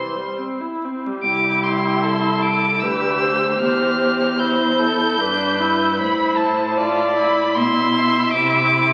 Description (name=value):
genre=classical, slow romantic movement for string quartet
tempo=76 BPM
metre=3/4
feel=rubato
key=C major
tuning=A4 = 440 Hz
part: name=rich violin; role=melody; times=0.0-8.9 s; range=A5 to G6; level=-23 LUFS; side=equal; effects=none
part: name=rich violin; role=second line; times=0.0-8.9 s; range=G4 to E5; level=-25 LUFS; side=equal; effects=none
part: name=rich viola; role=accompaniment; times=0.0-8.9 s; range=E3 to G4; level=-24 LUFS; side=equal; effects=none
part: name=rich cello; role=bass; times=1.2-8.9 s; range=C2 to C3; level=-26 LUFS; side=equal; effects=none
room=wet recital hall reverb, RT60 1.4 s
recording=very old 78 rpm record, vinyl crackle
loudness=-19 LUFS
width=mono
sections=0.0-1.2 A section; 1.2-8.9 B section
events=none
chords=0.0 C; 3.6 C/E; 6.0 Am; 8.4 Am/C (rootless)